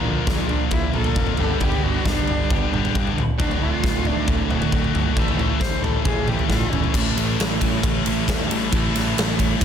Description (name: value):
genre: quiet-loud alternative rock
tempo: 135 BPM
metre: 4/4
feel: straight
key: unclear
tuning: A4 = 445 Hz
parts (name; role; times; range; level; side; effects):
- warm cello; melody; 0.0-6.9 s; D3 to C5; -28 LUFS; left 2 dB; none
- distorted electric guitar; riff; 0.0-9.6 s; D2 to Bb3; -26 LUFS; right 12 dB; distortion
- heavy high-gain guitar; riff; 0.0-9.6 s; D2 to Bb4; -26 LUFS; left 13 dB; distortion
- overdriven picked electric bass; bass; 0.1-9.6 s; D1 to A2; -27 LUFS; equal; none
- huge arena drum kit; drums; 0.3-9.6 s; crash cymbal, kick drum, ride cymbal, snare drum, toms; -22 LUFS; equal; soft clipping on snare
room: studio ambience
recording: dense, heavily limited modern master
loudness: -18 LUFS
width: side -8 dB against mid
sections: 0.0-6.9 A section; 6.9-9.6 B section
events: cello solo 0.0-6.9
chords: 0.0 Bb; 1.4 G; 3.4 D; 5.2 A